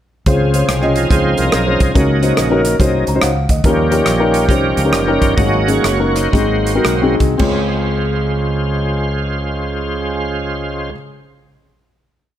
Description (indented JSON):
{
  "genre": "uptempo gospel",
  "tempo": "106-142 BPM",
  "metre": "4/4",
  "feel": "swing 65% on 8ths",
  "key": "Db major",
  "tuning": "A4 = 442 Hz",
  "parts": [
    { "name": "dark grand piano", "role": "accompaniment", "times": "0.3-10.9 s", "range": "Db2 to Bb5", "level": "-17 LUFS", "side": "left 2 dB", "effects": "none" },
    { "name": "bright tonewheel organ", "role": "sustained chords", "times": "0.3-10.9 s", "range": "Db3 to Eb5", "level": "-19 LUFS", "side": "right 2 dB", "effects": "overdrive, chorus vibrato, slow rotary speaker" },
    { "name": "fingered electric bass", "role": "bass", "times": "0.3-10.9 s", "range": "Gb1 to Eb2", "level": "-19 LUFS", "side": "equal", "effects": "none" },
    { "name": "natural country drum kit", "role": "drums", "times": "0.3-7.6 s", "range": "crash cymbal, hi-hat, kick drum, rim click", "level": "-18 LUFS", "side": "equal", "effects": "none" }
  ],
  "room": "light reverb",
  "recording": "faint mains hum",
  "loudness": "-13 LUFS",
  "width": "side -11 dB against mid",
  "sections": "0.3-7.4 breakdown; 7.4-11.9 final chord",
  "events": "tonewheel organ solo 0.3-7.4; grand piano fill 2.8-3.6; slowing down 3.6-7.4",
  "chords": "0.3 Dbmaj7; 2.0 Gb6; 3.6 Eb7; 5.4 Ab7sus4; 6.3 Ab7; 7.4 Dbmaj7"
}